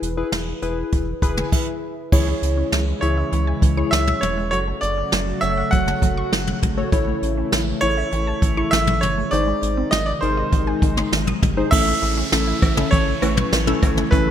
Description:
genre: synth-pop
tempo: 100 BPM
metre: 4/4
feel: straight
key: A major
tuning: A4 = 440 Hz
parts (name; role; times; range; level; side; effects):
- warm analog keys; accompaniment; 0.0-14.3 s; A3 to B5; -25 LUFS; left 3 dB; chorus
- rubbery square bass; bass; 0.0-14.3 s; E1 to C#2; -24 LUFS; equal; none
- jazz brush drum kit; drums; 0.0-14.3 s; cowbell, crash cymbal, hi-hat, kick drum, snare drum, toms; -21 LUFS; equal; none
- chorused pulse-width pad; sustained chords; 2.1-14.3 s; B#2 to F#4; -28 LUFS; equal; none
- resonant blip pluck; arpeggios; 2.1-14.3 s; D#3 to F#6; -30 LUFS; right 3 dB; phaser, ping-pong delay
- bright baby grand piano; melody; 3.0-14.3 s; B4 to F#5; -23 LUFS; right 1 dB; ping-pong delay
- downlifter; sound effects; 11.7-14.3 s; none; -29 LUFS; right 1 dB; none
room: moderate plate reverb, RT60 1.8 s, studio ambience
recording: bright 1980s-style digital production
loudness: -17 LUFS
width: side -9 dB against mid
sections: 0.0-2.1 A section; 2.1-11.7 B section; 11.7-14.3 C section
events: synth keys fill 0.9-2.1; stop 1.5-2.1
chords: 0.0 E; 2.1 C#m; 4.5 F#m; 6.9 A; 9.3 G#; 11.7 A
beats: 0.32 0.92 1.52 | 2.12 2.72 3.32 3.92 | 4.52 5.12 5.72 6.32 | 6.92 7.52 8.12 8.72 | 9.32 9.92 10.52 11.12 | 11.72 12.32 12.92 13.52 | 14.12

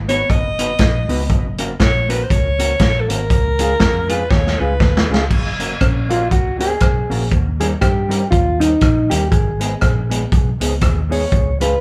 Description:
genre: ska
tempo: 120 BPM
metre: 4/4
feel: swing 58% on 8ths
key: F# major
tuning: A4 = 440 Hz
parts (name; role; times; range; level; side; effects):
- vintage muted fingered electric bass; bass; 0.0-11.7 s; F#1 to G2; -23 LUFS; equal; none
- breathy alto saxophone; melody; 0.1-5.1 s; A4 to D#5; -22 LUFS; equal; none
- hollow-body jazz guitar; accompaniment; 0.1-11.7 s; G3 to B4; -28 LUFS; equal; dub echo
- vintage drum kit; drums; 0.1-11.7 s; crash cymbal, hi-hat, kick drum, rim click, snare drum; -20 LUFS; equal; none
- mellow electric guitar; melody; 5.8-11.8 s; C#4 to C#5; -22 LUFS; equal; none
room: moderate studio ambience, RT60 0.5 s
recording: band playing live in one room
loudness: -16 LUFS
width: mono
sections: 0.0-5.3 A section; 5.3-11.8 A section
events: alto saxophone solo 0.0-5.3; drum fill 4.3-5.3; clean electric guitar solo 5.3-11.8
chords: 0.0 B; 1.3 F#; 3.3 C#; 5.3 F#; 7.3 D#7; 9.3 G#m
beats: 0.30 0.80 | 1.30 1.80 2.30 2.80 | 3.31 3.81 4.31 4.81 | 5.31 5.81 6.31 6.81 | 7.32 7.82 8.32 8.82 | 9.32 9.82 10.32 10.82 | 11.32

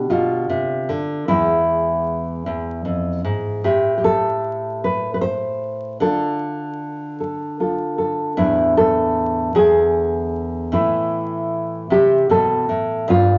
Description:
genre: folk, solo fingerstyle acoustic guitar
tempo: 51 BPM (dotted quarters)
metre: 6/8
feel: straight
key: A minor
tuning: A4 = 443 Hz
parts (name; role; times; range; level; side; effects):
- nylon-string guitar; solo; 0.0-13.4 s; E2 to C5; -20 LUFS; equal; none
room: wet studio reverb, RT60 0.7 s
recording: vinyl crackle, nothing above 7.5 kHz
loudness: -20 LUFS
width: mono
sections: 0.0-13.1 A section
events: none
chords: 0.0 Bdim; 1.3 E; 3.7 N.C.; 6.0 Dm; 8.4 E7sus4; 9.5 E7; 10.7 Am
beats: 0.11 | 1.29 2.47 | 3.65 4.83 | 6.01 7.19 | 8.37 9.55 | 10.73 11.91 | 13.09

